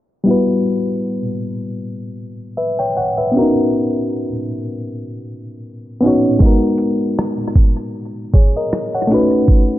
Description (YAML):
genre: lo-fi hip hop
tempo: 78 BPM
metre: 4/4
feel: swing 55% on 16ths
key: unclear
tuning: A4 = 440 Hz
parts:
  - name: reed electric piano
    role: accompaniment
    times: 0.2-9.8 s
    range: G3 to G5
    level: -16 LUFS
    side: left 1 dB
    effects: cassette tape
  - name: lo-fi sampler-style drum kit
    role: drums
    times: 6.4-9.7 s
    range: hi-hat, kick drum, rim click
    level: -13 LUFS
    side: right 1 dB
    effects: none
room: moderate echo chamber reverb, RT60 2.2 s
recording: echo-heavy mix, low-pass filter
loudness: -14 LUFS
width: side -15 dB against mid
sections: 0.3-9.8 A section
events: filter sweep 0.3-9.8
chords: 0.3 Emadd9; 3.3 Bmaj9; 6.4 G#m9; 9.1 B7